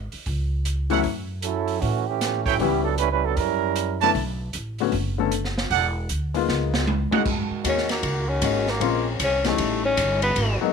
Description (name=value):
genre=jazz, big band swing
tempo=155 BPM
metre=4/4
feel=swing 65% on 8ths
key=F# major from 7.3 s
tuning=A4 = 440 Hz
part: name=upright bass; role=bass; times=0.0-10.6 s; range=E1 to A2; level=-27 LUFS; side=equal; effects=none
part: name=open jazz drum kit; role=drums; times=0.1-10.5 s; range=crash cymbal, hi-hat, kick drum, ride cymbal, snare drum, toms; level=-28 LUFS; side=right 1 dB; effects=none
part: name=warm baby grand piano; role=accompaniment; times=0.9-10.7 s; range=D3 to A4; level=-25 LUFS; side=left 14 dB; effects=none
part: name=clear trumpet section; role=stabs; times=0.9-7.2 s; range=G4 to A5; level=-23 LUFS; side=right 12 dB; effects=none
part: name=clear trombone section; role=second line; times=1.4-4.0 s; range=E3 to B4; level=-24 LUFS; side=right 12 dB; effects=none
part: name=bright trombone section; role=sustained chords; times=7.3-10.7 s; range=C#3 to F#4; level=-33 LUFS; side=equal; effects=none
part: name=clear tenor saxophone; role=melody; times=7.7-10.6 s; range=A3 to C#4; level=-24 LUFS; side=left 2 dB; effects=none
room=light reverb, small room reverb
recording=1960s-style stereo with parts hard left and right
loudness=-21 LUFS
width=side -6 dB against mid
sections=0.0-7.3 A section; 7.3-10.7 B section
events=trombone section solo 0.0-7.3; drum fill 6.5-7.3; tenor saxophone solo 7.3-10.7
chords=0.3 C#madd11; 1.0 F#m7; 2.6 C#m7b5; 3.4 F#7b9; 4.2 Bm9; 5.7 Em11; 6.5 C#13; 7.3 F#69; 8.8 A#m9; 9.6 A7#11